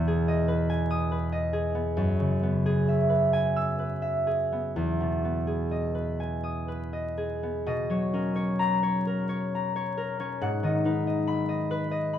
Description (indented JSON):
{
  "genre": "classical, solo harp piece",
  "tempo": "40-48 BPM (dotted quarters)",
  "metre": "6/8",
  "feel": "rubato",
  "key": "B major",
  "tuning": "A4 = 440 Hz",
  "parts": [
    { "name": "concert harp", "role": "solo", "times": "0.0-12.2 s", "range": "E2 to E6", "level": "-25 LUFS", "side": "equal", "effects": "none" }
  ],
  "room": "moderate recital hall reverb, RT60 1.6 s",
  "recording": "close, detailed microphones, vinyl crackle",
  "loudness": "-25 LUFS",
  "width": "side -10 dB against mid",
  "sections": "0.0-7.7 A section; 7.7-12.2 B section",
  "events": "none",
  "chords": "0.0 Emaj7; 2.0 F#11; 4.7 Emaj7; 7.7 Bmaj9; 10.4 G#m7"
}